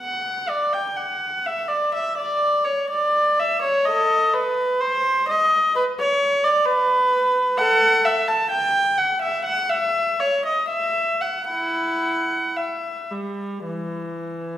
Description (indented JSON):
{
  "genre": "classical, baroque-style suite movement for unaccompanied viola",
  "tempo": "63 BPM",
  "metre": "4/4",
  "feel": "uneven beats, rubato",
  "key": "B minor, E minor from 7.6 s",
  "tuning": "A4 = 444 Hz",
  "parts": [
    { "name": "warm viola", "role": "solo", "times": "0.0-14.6 s", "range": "E3 to A5", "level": "-19 LUFS", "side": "equal", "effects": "none" }
  ],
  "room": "wet recital hall reverb, RT60 1.4 s",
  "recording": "recorded in a church or concert hall",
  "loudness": "-19 LUFS",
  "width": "side -12 dB against mid",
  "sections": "0.0-14.6 A section",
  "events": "none",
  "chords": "none",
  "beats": "| 0.02 0.99 1.95 2.91 | 3.88 4.82 5.76 6.68 | 7.60 8.54 9.48 10.46 | 11.51 12.59 13.67"
}